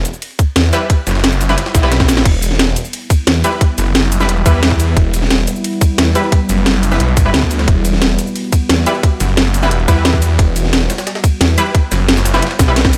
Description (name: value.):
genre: dark technical drum and bass.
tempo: 177 BPM.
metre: 4/4.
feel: straight.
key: E minor.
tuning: A4 = 438 Hz.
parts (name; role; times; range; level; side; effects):
orchestra-hit-like synth stab; stabs; 0.0-12.7 s; G3 to B4; -21 LUFS; equal; built-in reverb, digital delay.
snarling distorted saw bass; bass; 0.0-13.0 s; E1 to E2; -17 LUFS; equal; distortion, overdrive.
drum and bass drum kit; drums; 0.1-13.0 s; crash cymbal, hi-hat, ride cymbal, shaker, snare drum; -19 LUFS; equal; overdrive.
jungle sampler-style drum kit; drums; 0.1-12.9 s; hi-hat, ride cymbal, snare drum; -29 LUFS; equal; none.
electronic kick drum; drums; 0.4-12.9 s; none; -14 LUFS; equal; overdrive.
swell; sound effects; 1.7-2.3 s; none; -29 LUFS; equal; none.
deep dark ambient pad; sustained chords; 3.0-13.0 s; G3 to F#4; -25 LUFS; equal; chorus, built-in reverb, sidechain pumping.
room: light reverb, digital ambience.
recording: none.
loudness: -13 LUFS.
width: mono.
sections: 0.0-13.0 A section.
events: drum fill 1.9-2.3, 12.6-13.0.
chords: 0.0 Em.